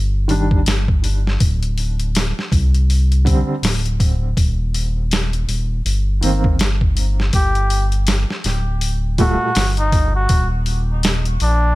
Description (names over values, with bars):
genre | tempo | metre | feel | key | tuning
trip hop | 81 BPM | 4/4 | swing 59% on 16ths | G harmonic minor | A4 = 440 Hz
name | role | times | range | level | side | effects
round analog bass | bass | 0.0-11.7 s | D1 to C2 | -17 LUFS | equal | tube saturation
felt-muted upright piano | accompaniment | 0.3-9.5 s | Bb2 to D4 | -23 LUFS | right 1 dB | tremolo, low-pass filter, tape echo
boom bap sampler-style drum kit | drums | 0.3-11.6 s | hi-hat, kick drum, snare drum | -19 LUFS | equal | studio reverb
trumpet with cup mute | melody | 7.4-11.8 s | D4 to G4 | -22 LUFS | equal | dub echo
room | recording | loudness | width
small room ambience | none | -15 LUFS | side -19 dB against mid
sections
0.0-11.8 A section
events
none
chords
0.0 Ebmaj7; 1.4 D7(no3); 4.4 Cm/Eb (rootless); 7.3 G5; 10.3 Ebmaj7(no3)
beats
0.67 | 1.41 2.15 2.89 3.63 | 4.37 5.11 5.85 6.59 | 7.33 8.07 8.81 9.55 | 10.29 11.04